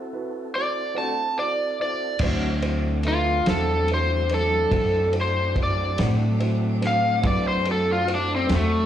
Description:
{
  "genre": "slow blues",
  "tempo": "48 BPM (dotted quarters)",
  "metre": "12/8",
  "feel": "straight",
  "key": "D mixolydian",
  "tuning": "A4 = 440 Hz",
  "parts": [
    { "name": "tonewheel organ", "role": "sustained chords", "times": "0.0-8.9 s", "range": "F#3 to A4", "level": "-36 LUFS", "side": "equal", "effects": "none" },
    { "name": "dark upright piano", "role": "accompaniment", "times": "0.1-8.8 s", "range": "D4 to E5", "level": "-33 LUFS", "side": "right 6 dB", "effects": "slapback echo" },
    { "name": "overdriven slide guitar", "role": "melody", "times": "0.6-8.9 s", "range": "A3 to A5", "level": "-23 LUFS", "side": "left 1 dB", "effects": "slapback echo" },
    { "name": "electric guitar through a small old amp", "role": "accompaniment", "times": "1.0-8.8 s", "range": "D3 to F#4", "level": "-33 LUFS", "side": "left 4 dB", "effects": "tremolo, slapback echo" },
    { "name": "bright saxophone section", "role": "sustained chords", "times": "2.2-8.9 s", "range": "F#3 to D4", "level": "-33 LUFS", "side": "equal", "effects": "none" },
    { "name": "upright bass", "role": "bass", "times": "2.2-8.9 s", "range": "D2 to A2", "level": "-24 LUFS", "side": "equal", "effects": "none" },
    { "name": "warm soul drum kit", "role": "drums", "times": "2.2-8.7 s", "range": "crash cymbal, kick drum, ride cymbal, snare drum", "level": "-30 LUFS", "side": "equal", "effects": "none" }
  ],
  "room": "light reverb",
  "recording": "live gig heard through the venue's PA, club reverb",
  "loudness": "-20 LUFS",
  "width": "side -10 dB against mid",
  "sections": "0.0-2.2 A section; 2.2-8.9 B section",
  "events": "break 0.0-2.2; electric slide guitar solo 2.2-8.9",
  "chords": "0.0 D7"
}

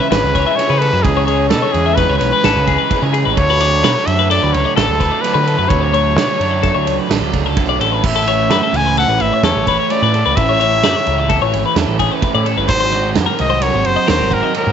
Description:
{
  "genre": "math rock and midwest emo",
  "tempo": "129 BPM",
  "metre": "5/4",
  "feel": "straight",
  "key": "D lydian",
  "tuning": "A4 = 440 Hz",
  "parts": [
    { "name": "clear trumpet", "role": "melody", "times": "0.0-14.7 s", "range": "G#4 to G#5", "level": "-17 LUFS", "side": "left 2 dB", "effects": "slapback echo" },
    { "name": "twelve-string electric guitar", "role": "arpeggios", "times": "0.0-14.7 s", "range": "G#4 to E5", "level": "-18 LUFS", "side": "left 13 dB", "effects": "none" },
    { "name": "crunchy overdriven guitar", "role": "riff", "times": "0.0-14.7 s", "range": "G#2 to F#4", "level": "-20 LUFS", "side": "right 13 dB", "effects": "none" },
    { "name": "growling picked electric bass", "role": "bass", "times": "0.1-14.7 s", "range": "F#1 to D3", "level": "-18 LUFS", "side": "equal", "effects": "overdrive" },
    { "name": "loose indie drum kit", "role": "drums", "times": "0.1-14.7 s", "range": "crash cymbal, kick drum, ride cymbal, snare drum", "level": "-20 LUFS", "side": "right 4 dB", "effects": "none" }
  ],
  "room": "studio ambience",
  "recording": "1960s-style stereo with parts hard left and right, nothing above 7.8 kHz",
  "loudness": "-12 LUFS",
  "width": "side -8 dB against mid",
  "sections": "0.0-14.7 A section",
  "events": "none",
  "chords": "0.0 C#m7; 3.4 Dmaj7; 8.0 Aadd9; 12.7 G#7"
}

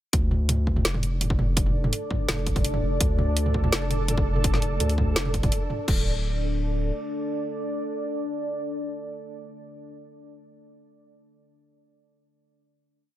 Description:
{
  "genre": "half-time drum and bass",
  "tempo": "167 BPM",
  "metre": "4/4",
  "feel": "half-time",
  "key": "D minor",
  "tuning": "A4 = 440 Hz",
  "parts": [
    { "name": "deep dark ambient pad", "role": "sustained chords", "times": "1.2-9.5 s", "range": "D4 to D5", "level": "-31 LUFS", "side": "equal", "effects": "chorus, built-in reverb, sidechain pumping" },
    { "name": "saturated sub bass", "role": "bass", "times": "0.1-6.9 s", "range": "D1 to D2", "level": "-25 LUFS", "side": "equal", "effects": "none" },
    { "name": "drum and bass drum kit", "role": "drums", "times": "0.1-6.0 s", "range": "crash cymbal, hi-hat, snare drum, toms", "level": "-28 LUFS", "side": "right 1 dB", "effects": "none" },
    { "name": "electronic kick drum", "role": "drums", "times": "0.1-6.0 s", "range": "none", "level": "-26 LUFS", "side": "equal", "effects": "none" },
    { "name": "flickering grainy texture", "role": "texture", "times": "3.2-5.9 s", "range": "A4", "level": "-37 LUFS", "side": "right 1 dB", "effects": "built-in reverb" }
  ],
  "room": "little or no reverb",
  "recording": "none",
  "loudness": "-23 LUFS",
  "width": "side -13 dB against mid",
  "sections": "0.1-5.9 drop; 5.9-8.8 final chord",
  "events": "drop 0.1-5.9",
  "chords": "0.1 D5"
}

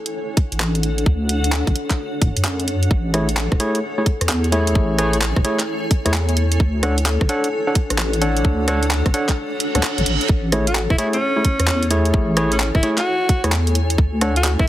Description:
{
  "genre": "UK garage, two-step garage",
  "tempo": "130 BPM",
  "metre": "4/4",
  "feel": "swing 65% on 16ths",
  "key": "A major",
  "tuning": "A4 = 436 Hz",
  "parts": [
    { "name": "granular cloud pad", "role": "texture", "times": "0.0-14.7 s", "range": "C#4 to G#5", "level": "-26 LUFS", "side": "left 1 dB", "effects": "built-in reverb, sidechain pumping" },
    { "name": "garage drum kit", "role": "drums", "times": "0.1-14.7 s", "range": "handclaps, hi-hat, rim click", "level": "-23 LUFS", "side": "right 1 dB", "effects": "overdrive" },
    { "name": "electronic kick drum", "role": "drums", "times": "0.4-14.7 s", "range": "none", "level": "-17 LUFS", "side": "equal", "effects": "overdrive" },
    { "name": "deep soft wobble bass", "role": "bass", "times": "0.5-14.7 s", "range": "D1 to F#2", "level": "-20 LUFS", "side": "equal", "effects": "chorus" },
    { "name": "overdriven tine electric piano", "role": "stabs", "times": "3.1-14.3 s", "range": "A3 to F#5", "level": "-22 LUFS", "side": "equal", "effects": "ping-pong delay" },
    { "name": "reverse cymbal", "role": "sound effects", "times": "9.6-10.3 s", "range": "none", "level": "-26 LUFS", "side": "right 7 dB", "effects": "none" },
    { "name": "clear alto saxophone", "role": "melody", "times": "10.7-14.6 s", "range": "C#4 to F#4", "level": "-22 LUFS", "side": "equal", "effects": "ping-pong delay" }
  ],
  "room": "light reverb",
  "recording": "heavily compressed radio sound",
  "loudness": "-16 LUFS",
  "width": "side -14 dB against mid",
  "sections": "0.0-14.7 A section",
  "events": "kick drops out 9.4-10.3; reverse cymbal 9.6-10.3",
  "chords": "0.0 Dmaj7; 2.9 Amaj7; 6.6 Dmaj7; 10.3 Amaj7; 14.0 Dmaj7"
}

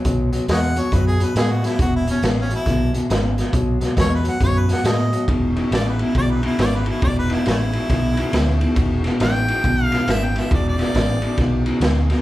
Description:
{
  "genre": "electric blues shuffle",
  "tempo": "138 BPM",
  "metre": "4/4",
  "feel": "swing 64% on 8ths",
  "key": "E mixolydian",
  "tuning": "A4 = 440 Hz",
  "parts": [
    { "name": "electric guitar through a small old amp", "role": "riff", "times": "0.0-12.2 s", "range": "E2 to G#3", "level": "-22 LUFS", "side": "left 1 dB", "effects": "none" },
    { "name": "vintage muted fingered electric bass", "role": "bass", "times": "0.0-12.1 s", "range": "E1 to A2", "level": "-21 LUFS", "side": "equal", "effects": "none" },
    { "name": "raw garage drum kit", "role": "drums", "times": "0.0-12.2 s", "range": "hi-hat, kick drum, ride cymbal, snare drum", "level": "-22 LUFS", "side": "equal", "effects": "none" },
    { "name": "warm harmonica", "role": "melody", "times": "0.5-11.5 s", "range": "A3 to G5", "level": "-26 LUFS", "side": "equal", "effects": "none" }
  ],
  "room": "moderate large studio reverb, RT60 0.8 s",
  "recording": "band playing live in one room",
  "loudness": "-17 LUFS",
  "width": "side -16 dB against mid",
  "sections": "0.0-5.3 A section; 5.3-12.2 A section",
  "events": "harmonica solo 0.0-12.2",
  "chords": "0.0 B7(no3); 1.8 E; 3.5 B7; 5.3 E7(no3)"
}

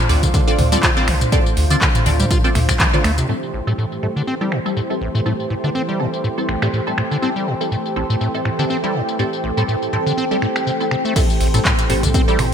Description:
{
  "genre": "acid house",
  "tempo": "122 BPM",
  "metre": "4/4",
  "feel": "swing 55% on 16ths",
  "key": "A minor",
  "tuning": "A4 = 439 Hz",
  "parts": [
    { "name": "warm analog pad", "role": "sustained chords", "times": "0.0-12.5 s", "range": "D3 to C5", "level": "-25 LUFS", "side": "right 1 dB", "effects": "chorus, sidechain pumping" },
    { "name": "warbly tape-like pad", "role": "texture", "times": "0.0-12.5 s", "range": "C4 to G5", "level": "-26 LUFS", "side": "equal", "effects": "chorus, built-in reverb, phaser, sidechain pumping" },
    { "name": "acid bass, square", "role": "riff", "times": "0.1-12.5 s", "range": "A1 to F4", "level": "-22 LUFS", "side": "equal", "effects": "overdrive, sidechain pumping, digital delay" },
    { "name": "filtered dub chord stab", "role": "stabs", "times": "0.1-12.5 s", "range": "G3 to D5", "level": "-25 LUFS", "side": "equal", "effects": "phaser, analog chorus, digital delay" },
    { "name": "saturated sub bass", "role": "bass", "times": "0.1-3.2, 11.4-12.5 s", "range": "A1 to D2", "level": "-19 LUFS", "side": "equal", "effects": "tube saturation, sidechain pumping" },
    { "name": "booming analog drum machine", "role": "drums", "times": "0.1-12.5 s", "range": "crash cymbal, finger snaps, handclaps, hi-hat, tambourine, toms", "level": "-22 LUFS", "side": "equal", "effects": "low-pass filter on hats, low-pass filter on perc, low-pass filter on snare, low-pass filter on toms, low-pass filter on cymbals, gated reverb" },
    { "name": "electronic kick drum", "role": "drums", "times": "0.2-2.9, 11.2-12.3 s", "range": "none", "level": "-18 LUFS", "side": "equal", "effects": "none" }
  ],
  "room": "moderate lush hall reverb, RT60 2.2 s",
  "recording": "bright 1980s-style digital production",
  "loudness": "-16 LUFS",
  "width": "side -8 dB against mid",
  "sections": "0.0-3.3 A section; 3.3-11.2 B section; 11.2-12.5 A section",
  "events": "drop 0.0-3.3, 11.2-12.5; filter sweep on acid bass 3.3-11.2",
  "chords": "0.0 Dm7; 3.3 Am7"
}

